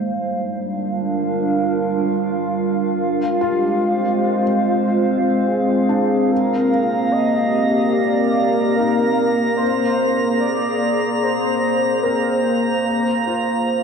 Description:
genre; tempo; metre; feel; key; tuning
ambient; 73 BPM; 4/4; straight; Eb major; A4 = 441 Hz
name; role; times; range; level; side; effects
warbly tape-like pad; sustained chords; 0.0-13.8 s; G3 to F5; -18 LUFS; equal; chorus, built-in reverb
warm velvety synth lead; melody; 3.4-12.6 s; F4 to Eb5; -23 LUFS; equal; chorus, tape echo
felt-muted upright piano; arpeggios; 3.4-13.8 s; C4 to F4; -31 LUFS; left 1 dB; tape echo
drifting glass-harmonics texture; texture; 6.8-13.8 s; Bb5; -25 LUFS; right 1 dB; chorus, built-in reverb
room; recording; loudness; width
wet huge ambient reverb, RT60 8.1 s; dark, warm production, nothing above 10.3 kHz; -16 LUFS; side -6 dB against mid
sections
0.0-13.8 A section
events
fade-in on soft synth lead 0.0-13.8; fade-out on felt piano 0.0-13.8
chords
0.0 Gm7; 3.0 Fm; 6.3 Ebmaj9; 9.6 Bb7sus2; 12.9 Gm7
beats
0.58 1.39 2.20 | 3.01 3.83 4.66 5.48 | 6.32 7.14 7.97 8.79 | 9.61 10.43 11.25 12.06 | 12.87 13.67

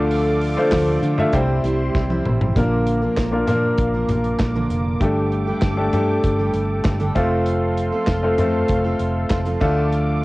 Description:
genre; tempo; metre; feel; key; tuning
piano-driven pop; 98 BPM; 4/4; straight; unclear; A4 = 441 Hz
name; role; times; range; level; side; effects
warm grand piano; accompaniment; 0.0-10.2 s; G2 to E5; -20 LUFS; left 1 dB; cassette tape
warm analog pad; sustained chords; 0.0-10.2 s; G4 to D6; -29 LUFS; right 1 dB; chorus, cassette tape, plate reverb
picked steel-string acoustic guitar; riff; 0.0-10.2 s; G2 to C5; -27 LUFS; right 3 dB; cassette tape
vintage muted fingered electric bass; bass; 0.0-10.2 s; F1 to D3; -23 LUFS; equal; none
modern studio drum kit; drums; 0.1-10.1 s; crash cymbal, handclaps, hi-hat, kick drum, snare drum, toms; -23 LUFS; equal; cassette tape
room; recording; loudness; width
light reverb; home recording on cassette; -17 LUFS; side -20 dB against mid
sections
0.0-2.6 A section; 2.6-10.2 B section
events
drum fill 1.9-2.6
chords
0.0 Dm; 1.3 C; 2.6 Bb; 5.0 Gsus2; 7.2 F; 9.6 Dm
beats
| 0.11 0.72 1.34 1.95 | 2.56 3.17 3.79 4.40 | 5.01 5.62 6.24 6.85 | 7.46 8.08 8.69 9.30 | 9.91

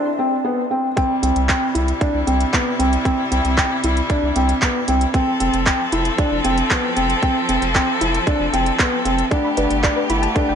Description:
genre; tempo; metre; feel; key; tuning
piano and strings electronica; 115 BPM; 4/4; straight; C major; A4 = 440 Hz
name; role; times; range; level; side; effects
felt-muted upright piano; riff; 0.0-10.5 s; B3 to E4; -19 LUFS; equal; digital delay
bright string quartet; sustained chords; 1.0-10.6 s; C3 to A4; -23 LUFS; left 1 dB; sidechain pumping
electronic kick drum; drums; 1.0-10.5 s; none; -21 LUFS; right 1 dB; overdrive
organic electronic drum kit; drums; 1.0-10.5 s; handclaps, hi-hat; -24 LUFS; right 1 dB; overdrive
round analog bass; bass; 1.2-10.6 s; F1 to C2; -22 LUFS; right 1 dB; sidechain pumping
soft round pluck; arpeggios; 9.3-10.6 s; A4 to B5; -28 LUFS; left 2 dB; chorus, sidechain pumping, digital delay
room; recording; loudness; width
light reverb; nothing above 10.6 kHz; -16 LUFS; side -8 dB against mid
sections
1.0-10.6 A section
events
break 0.0-1.0; drop 1.0-10.6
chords
0.0 N.C.; 1.0 C; 5.1 F; 9.3 Gadd9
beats
0.45 | 0.97 1.49 2.01 2.53 | 3.05 3.58 4.10 4.62 | 5.14 5.66 6.18 6.71 | 7.23 7.75 8.27 8.79 | 9.31 9.84 10.36

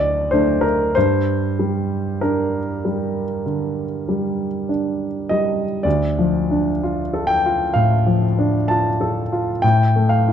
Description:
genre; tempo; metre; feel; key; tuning
classical, romantic nocturne for solo piano; 46-65 BPM; 4/4; rubato; G minor, D minor from 5.9 s; A4 = 440 Hz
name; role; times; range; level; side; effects
warm baby grand piano; solo; 0.0-10.3 s; D2 to A5; -17 LUFS; equal; none
room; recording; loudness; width
light reverb; dark, warm production; -17 LUFS; side -8 dB against mid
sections
0.0-5.9 A section; 5.9-10.3 B section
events
none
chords
0.0 D5; 0.9 Gm; 5.9 Dm; 9.6 N.C.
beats
| 0.95 2.21 3.46 4.69 | 5.85 6.83 7.76 8.69 | 9.63

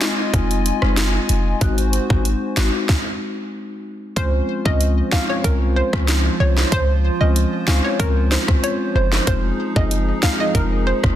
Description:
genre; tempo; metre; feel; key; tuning
dancehall; 94 BPM; 4/4; straight; Db major; A4 = 440 Hz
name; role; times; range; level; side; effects
marimba with medium hard mallets; accompaniment; 0.0-11.2 s; Ab3 to Gb4; -24 LUFS; left 2 dB; sidechain pumping
hollow soft pad; sustained chords; 0.0-11.2 s; F3 to Ab5; -27 LUFS; right 2 dB; chorus
island pop drum kit; drums; 0.0-11.2 s; hi-hat, kick drum, rim click, snare drum; -21 LUFS; equal; none
warm 808-style bass; bass; 0.3-11.2 s; F1 to Db2; -19 LUFS; equal; none
analog pluck; melody; 4.2-11.0 s; Bb4 to F5; -24 LUFS; right 1 dB; chorus, ping-pong delay
room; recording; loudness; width
little or no reverb; dense, heavily limited modern master; -16 LUFS; side -12 dB against mid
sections
0.0-4.2 A section; 4.2-11.2 B section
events
stop 2.9-4.2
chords
0.0 Fm7; 1.6 Ab7; 4.2 Dbmaj7; 9.3 Fm7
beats
0.34 0.97 | 1.61 2.25 2.89 3.53 | 4.17 4.80 5.44 6.08 | 6.72 7.36 8.00 8.63 | 9.27 9.91 10.55

